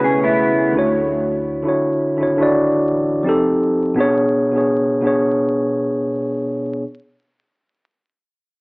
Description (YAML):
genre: lo-fi hip hop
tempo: 84 BPM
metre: 4/4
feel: swing 55% on 16ths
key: B dorian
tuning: A4 = 440 Hz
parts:
  - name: mellow electric guitar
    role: second line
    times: 0.0-0.7 s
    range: B3 to G#4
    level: -18 LUFS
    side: equal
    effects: analog chorus, low-pass filter, analog delay
  - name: mellow tine electric piano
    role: accompaniment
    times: 0.0-6.8 s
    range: B2 to D5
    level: -16 LUFS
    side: equal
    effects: slow stereo tremolo, low-pass filter
  - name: dark analog pad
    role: sustained chords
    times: 0.0-1.1 s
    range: B2 to C#5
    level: -25 LUFS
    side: equal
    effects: chorus, low-pass filter
  - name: soft dub sub bass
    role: bass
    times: 0.2-3.8 s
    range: Eb1 to D2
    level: -36 LUFS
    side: equal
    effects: none
room: wet studio reverb, RT60 0.7 s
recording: worn, warbling old tape, cassette tape, vinyl crackle, warbly pitch drift, AM radio sound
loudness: -15 LUFS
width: side -39 dB against mid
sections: 0.0-6.8 A section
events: none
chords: 0.0 Amaj9; 0.8 Dmaj7; 3.3 F9; 4.0 Bm69